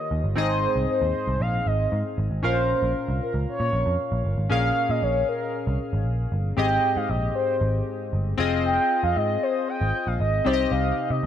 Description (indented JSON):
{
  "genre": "1980s-style pop",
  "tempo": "116 BPM",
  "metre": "4/4",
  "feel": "straight",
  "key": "unclear",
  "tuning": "A4 = 442 Hz",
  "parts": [
    { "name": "mellow horn-like synth lead", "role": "melody", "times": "0.0-11.3 s", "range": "Bb4 to G5", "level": "-26 LUFS", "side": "equal", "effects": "chorus, phaser, tape echo" },
    { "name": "chorused retro synth keys", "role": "accompaniment", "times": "0.0-11.3 s", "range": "Ab2 to F5", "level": "-27 LUFS", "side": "left 3 dB", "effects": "none" },
    { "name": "vintage muted picked electric bass", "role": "bass", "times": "0.1-11.3 s", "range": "F1 to C3", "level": "-25 LUFS", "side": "right 1 dB", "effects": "none" }
  ],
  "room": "light reverb, digital ambience",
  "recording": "none",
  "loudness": "-22 LUFS",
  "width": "side -10 dB against mid",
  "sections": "0.0-4.5 A section; 4.5-11.3 B section",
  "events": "none",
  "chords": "0.4 Ab; 2.4 Bbm7; 6.6 Abmaj7; 8.4 Fm7; 10.5 Cm"
}